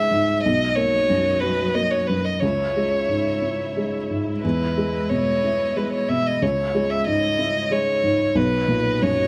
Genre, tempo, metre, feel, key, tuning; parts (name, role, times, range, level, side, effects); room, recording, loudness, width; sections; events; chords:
neoclassical piano and strings; 92 BPM; 3/4; rubato; C# dorian; A4 = 440 Hz
warm violin; melody; 0.0-9.3 s; B4 to E5; -24 LUFS; equal; tape echo
felt-muted upright piano; accompaniment; 0.0-9.3 s; B1 to F#4; -25 LUFS; equal
rich chamber string section; sustained chords; 0.0-9.3 s; F#3 to E5; -36 LUFS; equal
light reverb; -22 LUFS; mono
0.0-9.3 A section
0.4 Bmaj7; 2.4 C#m; 4.4 Emaj7; 6.4 C#m; 8.4 Bmaj7